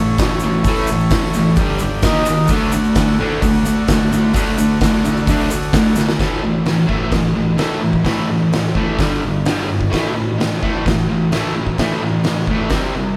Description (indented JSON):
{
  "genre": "garage rock duo or trio",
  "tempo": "129 BPM",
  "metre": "4/4",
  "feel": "straight",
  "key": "A mixolydian",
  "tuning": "A4 = 440 Hz",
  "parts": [
    { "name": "combo organ", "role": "sustained chords", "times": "0.0-6.2 s", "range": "D4 to D#5", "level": "-27 LUFS", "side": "equal", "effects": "none" },
    { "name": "fuzz guitar", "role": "riff", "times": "0.0-13.2 s", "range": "G2 to D#4", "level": "-19 LUFS", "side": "equal", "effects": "distortion" },
    { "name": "oversized low-tuned drum kit", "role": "drums", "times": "0.2-12.8 s", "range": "hi-hat, kick drum, snare drum", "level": "-22 LUFS", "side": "equal", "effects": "none" },
    { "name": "egg shaker", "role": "percussion", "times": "0.2-6.1 s", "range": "none", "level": "-36 LUFS", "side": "equal", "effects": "none" }
  ],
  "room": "moderate large studio reverb, RT60 1.0 s",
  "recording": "band playing live in one room",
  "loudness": "-17 LUFS",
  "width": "mono",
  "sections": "0.0-6.2 A section; 6.2-13.2 B section",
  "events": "drum fill 6.0",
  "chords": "0.0 A; 1.6 G5; 2.0 D#5; 2.5 D; 6.2 A5; 9.0 G5; 9.9 A5"
}